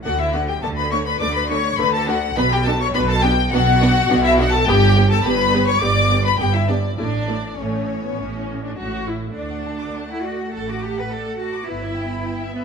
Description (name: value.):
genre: quick classical-period movement for string orchestra.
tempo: 103 BPM.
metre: 4/4.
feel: straight.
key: D major.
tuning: A4 = 445 Hz.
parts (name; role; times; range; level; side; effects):
rich studio violin section; melody; 0.0-12.6 s; C#5 to D6; -22 LUFS; left 5 dB; none.
rich studio violin section; second line; 0.0-12.6 s; C#4 to D6; -24 LUFS; left 4 dB; none.
rich studio viola section; accompaniment; 0.0-12.6 s; A3 to G4; -26 LUFS; right 2 dB; none.
clear studio cello section; bass; 0.0-12.6 s; G2 to B4; -24 LUFS; right 3 dB; none.
rich studio double bass section; bass; 0.0-12.2 s; G1 to D2; -23 LUFS; right 3 dB; none.
room: moderate scoring stage reverb, RT60 1.6 s.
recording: none.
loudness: -17 LUFS.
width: side -6 dB against mid.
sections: 0.0-9.4 A section; 9.4-12.6 B section.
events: none.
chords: 0.0 D5; 2.4 Bm; 4.7 G; 7.0 A; 9.4 D; 11.7 Em/G.